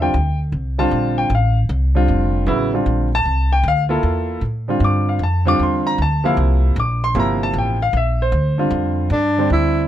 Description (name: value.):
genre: modal jazz.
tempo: 154 BPM.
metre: 3/4.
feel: swing 66% on 8ths.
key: unclear.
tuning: A4 = 445 Hz.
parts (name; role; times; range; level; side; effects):
warm concert grand piano; accompaniment; 0.0-9.9 s; C3 to D6; -19 LUFS; equal; none.
upright bass; bass; 0.0-9.9 s; F1 to A2; -18 LUFS; equal; none.
breathy tenor saxophone; melody; 9.1-9.9 s; D4 to E4; -17 LUFS; equal; none.
room: little or no reverb.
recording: close, detailed microphones.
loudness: -15 LUFS.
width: side -11 dB against mid.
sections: 0.0-9.5 A section.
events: none.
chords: 0.0 Dm9; 4.8 Gm9.